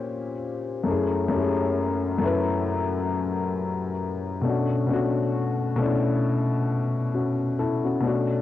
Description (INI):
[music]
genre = hip hop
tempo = 67 BPM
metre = 4/4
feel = swing 56% on 16ths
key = B minor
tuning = A4 = 439 Hz
[part]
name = dark upright piano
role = solo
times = 0.0-8.4 s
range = F#2 to B4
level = -23 LUFS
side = left 2 dB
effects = low-pass filter, cassette tape
[sound]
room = light reverb, small room ambience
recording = home recording on cassette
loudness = -23 LUFS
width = side -13 dB against mid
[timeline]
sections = 0.0-8.0 A section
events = none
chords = 0.0 A#m9; 0.9 F#m9; 4.4 Bm9